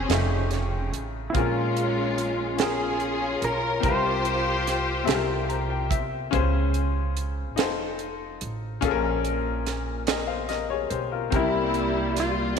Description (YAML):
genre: slow gospel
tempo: 48 BPM (dotted quarters)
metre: 6/8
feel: straight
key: unclear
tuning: A4 = 440 Hz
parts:
  - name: clean lap steel guitar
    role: melody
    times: 0.0-5.9, 11.4-12.3 s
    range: E4 to C5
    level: -30 LUFS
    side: right 4 dB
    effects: slapback echo
  - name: rich studio string section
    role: melody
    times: 0.0-5.9, 11.3-12.6 s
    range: G3 to C5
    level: -28 LUFS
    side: left 2 dB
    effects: none
  - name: clear baby grand piano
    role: accompaniment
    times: 0.0-12.6 s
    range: Bb2 to Bb5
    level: -28 LUFS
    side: left 9 dB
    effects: none
  - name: upright bass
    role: bass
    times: 0.0-12.6 s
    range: F1 to Db2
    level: -29 LUFS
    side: right 2 dB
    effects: none
  - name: crisp fusion drum kit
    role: drums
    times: 0.1-12.6 s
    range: hi-hat, kick drum, snare drum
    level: -29 LUFS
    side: right 6 dB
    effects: none
room: moderate echo chamber reverb, RT60 2.2 s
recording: 1960s-style stereo with parts hard left and right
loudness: -23 LUFS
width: side -6 dB against mid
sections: 0.0-12.6 A section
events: grand piano fill 5.1-6.3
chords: 0.1 F7alt; 1.3 Bbm7; 3.8 C7sus4; 5.1 C7; 6.3 Dbmaj7; 7.6 F7; 8.8 Bbm7; 11.3 C7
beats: 0.10 | 1.35 2.59 | 3.84 5.08 | 6.33 7.58 | 8.82 10.07 | 11.32 12.56